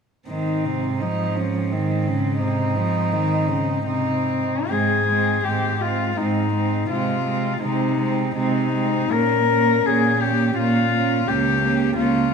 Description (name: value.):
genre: classical, lyrical piece for cello ensemble.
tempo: 68-87 BPM.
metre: 3/4.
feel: rubato.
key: Ab major.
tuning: A4 = 441 Hz.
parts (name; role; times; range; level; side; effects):
warm cello; melody; 0.3-12.3 s; C4 to Bb4; -23 LUFS; left 7 dB; none.
warm cello; second line; 0.3-12.3 s; C4 to Eb4; -26 LUFS; right 8 dB; none.
warm cello; accompaniment; 0.3-12.3 s; C3 to Bb3; -25 LUFS; equal; none.
rich cello; bass; 0.3-12.3 s; Db2 to C3; -25 LUFS; right 3 dB; none.
room: wet recital hall reverb, RT60 1.8 s.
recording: minimal, uncompressed stereo recording.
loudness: -18 LUFS.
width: side -6 dB against mid.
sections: 0.3-4.7 A section; 4.7-12.3 B section.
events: none.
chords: 0.3 Ab; 6.9 Ab/C; 9.1 Bbm; 11.3 Bbm/Db.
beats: | 0.28 1.01 1.72 | 2.41 3.12 3.86 | 4.69 5.44 6.16 | 6.89 7.62 8.35 | 9.12 9.85 10.56 | 11.27 11.97.